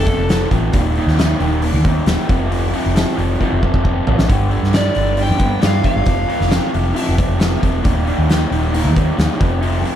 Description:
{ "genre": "blues rock power trio and southern rock", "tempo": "135 BPM", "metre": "4/4", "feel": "straight", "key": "unclear", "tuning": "A4 = 440 Hz", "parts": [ { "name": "overdriven slide guitar", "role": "melody", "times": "0.0-0.5, 4.8-7.6 s", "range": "A4 to G5", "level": "-22 LUFS", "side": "right 1 dB", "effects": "slapback echo" }, { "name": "raw garage guitar", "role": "riff", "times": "0.0-10.0 s", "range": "Eb2 to G3", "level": "-20 LUFS", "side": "equal", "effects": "overdrive" }, { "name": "vintage muted fingered electric bass", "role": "bass", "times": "0.0-9.8 s", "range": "Eb1 to G2", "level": "-18 LUFS", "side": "equal", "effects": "none" }, { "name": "oversized low-tuned drum kit", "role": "drums", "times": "0.1-10.0 s", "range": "hi-hat, kick drum, snare drum, toms", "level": "-18 LUFS", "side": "equal", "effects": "none" } ], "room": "little or no reverb", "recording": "none", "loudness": "-14 LUFS", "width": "side -10 dB against mid", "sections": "0.0-10.0 A section", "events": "drum fill 3.4-4.3", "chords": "0.0 F; 0.7 Eb5; 2.3 F5; 4.3 G5; 6.1 F5; 7.9 Eb5; 9.4 F5" }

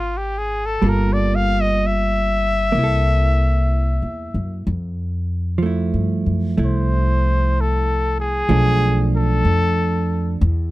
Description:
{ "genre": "jazz ballad", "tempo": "63 BPM", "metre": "4/4", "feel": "swing 66% on 8ths", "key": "F major", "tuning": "A4 = 440 Hz", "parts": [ { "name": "warm trumpet", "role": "melody", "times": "0.0-10.4 s", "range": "F4 to F5", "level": "-22 LUFS", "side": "left 1 dB", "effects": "none" }, { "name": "hollow-body jazz guitar", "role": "accompaniment", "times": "0.0-10.4 s", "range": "F3 to A4", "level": "-23 LUFS", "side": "right 4 dB", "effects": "none" }, { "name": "upright bass", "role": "bass", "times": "0.0-10.7 s", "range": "G1 to G2", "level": "-19 LUFS", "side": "equal", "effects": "none" } ], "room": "little or no reverb", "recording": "close, detailed microphones", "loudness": "-17 LUFS", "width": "side -17 dB against mid", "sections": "0.0-10.7 A section", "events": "trumpet solo 0.0-10.7", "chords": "0.0 Dbmaj7 (rootless); 0.8 Gm9; 2.7 C6; 4.7 Fmaj7; 8.5 Bm7b5" }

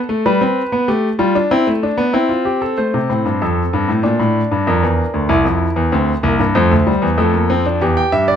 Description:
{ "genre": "classical, baroque-style 4-part fugue for grand piano", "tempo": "96 BPM", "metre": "4/4", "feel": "straight", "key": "F major", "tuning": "A4 = 439 Hz", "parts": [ { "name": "clear grand piano", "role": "solo", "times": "0.0-8.4 s", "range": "C2 to G5", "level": "-13 LUFS", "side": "equal", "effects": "none" } ], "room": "light reverb", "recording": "close, detailed microphones", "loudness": "-13 LUFS", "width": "side -8 dB against mid", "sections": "0.0-2.8 A section; 2.8-8.4 B section", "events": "none", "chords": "0.3 G7; 1.5 C; 2.8 F; 4.0 Gm7; 5.3 C7; 6.6 F; 7.8 C/E (rootless)" }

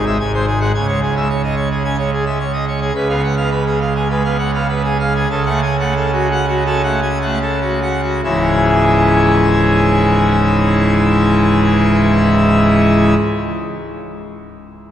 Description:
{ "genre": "classical, organ toccata", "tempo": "70-110 BPM", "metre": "4/4", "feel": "straight", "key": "C# minor", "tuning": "A4 = 440 Hz", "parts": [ { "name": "pipe organ, full organ", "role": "solo", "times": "0.0-13.1 s", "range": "C#1 to G#5", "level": "-13 LUFS", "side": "equal", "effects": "none" } ], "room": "wet cathedral reverb, RT60 4.2 s", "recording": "heard from further back in the room", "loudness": "-13 LUFS", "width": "side -10 dB against mid", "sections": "0.0-3.0 A section; 3.0-8.2 B section; 8.2-14.9 C section", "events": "slowing down 1.8-8.2", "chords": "0.2 G#7; 0.7 C#m; 3.0 C#7; 5.3 F#m/C#; 8.2 C#m" }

